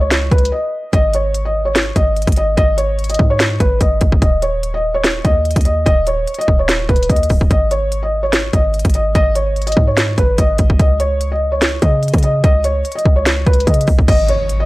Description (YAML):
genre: hip hop, trap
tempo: 146 BPM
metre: 4/4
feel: half-time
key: G# minor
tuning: A4 = 439 Hz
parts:
  - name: felt-muted upright piano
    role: melody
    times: 0.0-14.7 s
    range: B4 to D#5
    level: -18 LUFS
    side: equal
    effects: low-pass filter
  - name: warm 808-style bass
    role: bass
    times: 0.0-14.7 s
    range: C#1 to C#3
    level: -18 LUFS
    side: equal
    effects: none
  - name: trap drum kit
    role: drums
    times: 0.1-14.6 s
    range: crash cymbal, hi-hat, kick drum, snare drum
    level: -14 LUFS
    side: equal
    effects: none
  - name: impact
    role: sound effects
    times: 14.2-14.7 s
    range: none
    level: -22 LUFS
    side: equal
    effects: none
room: digital ambience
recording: dry, gritty hardware recording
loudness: -12 LUFS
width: side -19 dB against mid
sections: 0.0-14.1 A section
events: break 0.5-0.9; impact 14.1-14.7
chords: 0.0 C#sus2; 0.9 G#5; 4.2 C#sus2; 7.5 G#5; 10.8 Badd9 (rootless); 14.1 G#5